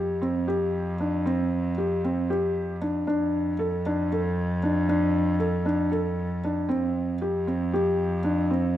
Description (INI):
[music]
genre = contemporary instrumental, chamber music in an uneven meter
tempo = 231 BPM (eighths)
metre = 7/8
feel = straight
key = F major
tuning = A4 = 443 Hz
[part]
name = felt-muted upright piano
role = arpeggios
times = 0.0-8.8 s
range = C4 to A4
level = -25 LUFS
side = equal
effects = none
[part]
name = warm cello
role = bass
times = 0.0-8.8 s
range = F2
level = -28 LUFS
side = equal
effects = none
[sound]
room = light reverb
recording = none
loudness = -23 LUFS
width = side -12 dB against mid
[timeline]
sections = 0.0-8.8 A section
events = none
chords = 0.0 Fsus2; 3.1 Dm/F; 6.7 Fsus2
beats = 0.21 0.47 0.73 0.99 | 1.25 1.51 1.77 2.03 2.29 2.55 2.81 | 3.07 3.33 3.59 3.85 4.11 4.37 4.63 | 4.89 5.15 5.41 5.67 5.92 6.18 6.44 | 6.70 6.96 7.22 7.48 7.74 8.00 8.25 | 8.51